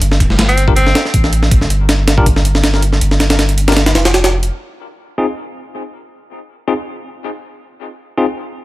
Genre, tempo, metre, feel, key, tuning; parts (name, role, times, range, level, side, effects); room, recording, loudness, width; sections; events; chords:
drum and bass, jungle; 160 BPM; 4/4; swing 53% on 16ths; A4 = 440 Hz
saturated sub bass; bass; 0.0-4.5 s; F1 to A1; -14 LUFS; equal
breakbeat sampler-style drum kit; drums; 0.0-4.5 s; hi-hat, kick drum, snare drum; -13 LUFS; equal; small room ambience
edgy tenor saxophone; melody; 0.5-1.1 s; C4; -18 LUFS; equal; dub echo
bell-like tine electric piano; stabs; 0.7-8.3 s; C4 to Bb4; -21 LUFS; left 3 dB; medium stereo tremolo, vintage 12-bit sampler grit, low-pass filter, dub echo
little or no reverb; -11 LUFS; side -17 dB against mid
0.0-4.5 A section; 4.5-8.6 B section
drop 0.0-4.5
0.0 G7(no3); 4.5 Fm7